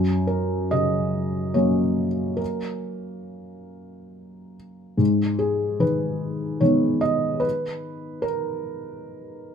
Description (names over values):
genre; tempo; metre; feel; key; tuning
neoclassical minimalist piano; 68-76 BPM; 3/4; rubato; G# minor; A4 = 440 Hz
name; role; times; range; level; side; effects
felt-muted upright piano; solo; 0.0-9.5 s; F#2 to D#5; -22 LUFS; equal; none
room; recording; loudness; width
moderate studio reverb, RT60 0.8 s; minimal, uncompressed stereo recording; -21 LUFS; side -7 dB against mid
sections
0.0-9.5 A section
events
none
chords
0.0 F#; 5.0 G#madd9